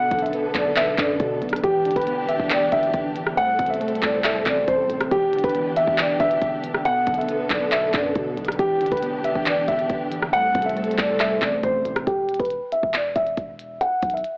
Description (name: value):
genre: hip hop, trap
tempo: 138 BPM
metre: 4/4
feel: half-time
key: E minor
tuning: A4 = 439 Hz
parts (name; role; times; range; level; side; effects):
- dark concert grand piano; melody; 0.0-14.4 s; G4 to F#5; -21 LUFS; equal; low-pass filter, cassette tape
- mellow electric guitar; accompaniment; 0.0-12.1 s; E2 to B3; -29 LUFS; right 1 dB; analog chorus, low-pass filter, cassette tape
- warm symphonic string section; sustained chords; 0.0-12.1 s; D3 to A4; -28 LUFS; equal; cassette tape
- long sustained 808-style bass; bass; 0.1-14.2 s; D1 to B2; -35 LUFS; equal; none
- glitchy drum kit; drums; 0.1-14.3 s; handclaps, hi-hat, kick drum, rim click; -26 LUFS; equal; cassette tape
room: light reverb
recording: home recording on cassette, AM radio sound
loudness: -19 LUFS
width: side -31 dB against mid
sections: 0.0-12.1 A section; 12.1-14.4 B section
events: filter sweep 12.1-14.4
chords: 0.0 Bm7; 1.6 Em7; 3.4 Am7; 5.1 Em7; 6.9 Bm7; 8.6 Em7; 10.3 Am7; 12.1 N.C.; 13.8 B5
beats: 0.33 0.77 1.20 | 1.64 2.07 2.50 2.94 | 3.37 3.81 4.24 4.68 | 5.11 5.55 5.98 6.42 | 6.85 7.29 7.72 8.16 | 8.59 9.03 9.46 9.90 | 10.33 10.77 11.20 11.63 | 12.07 12.51 12.94 13.37 | 13.81 14.24